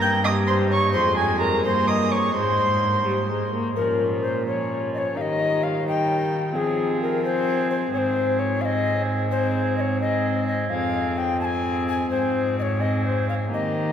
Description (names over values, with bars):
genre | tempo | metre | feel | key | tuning
classical, renaissance-style consort dance | 86 BPM (dotted quarters) | 6/8 | straight | unclear | A4 = 438 Hz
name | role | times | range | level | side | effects
alto recorder | melody | 0.0-13.9 s | Ab4 to A5 | -25 LUFS | left 4 dB | none
dark violin | second line | 0.0-13.9 s | Db4 to G6 | -27 LUFS | right 3 dB | none
rich viola | accompaniment | 0.0-13.9 s | F3 to C4 | -27 LUFS | left 1 dB | none
rich cello | bass | 0.0-13.9 s | F2 to F3 | -26 LUFS | right 1 dB | none
room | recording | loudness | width
wet cathedral reverb, RT60 7.3 s | recorded in a church or concert hall | -20 LUFS | side -8 dB against mid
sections
0.0-3.8 A section; 3.8-13.9 B section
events
none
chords
0.0 Gdim; 0.9 Fm; 2.4 Ab; 3.8 Bbm; 5.2 Eb; 6.5 Fm; 7.9 Ab; 10.7 Fm; 12.1 Ab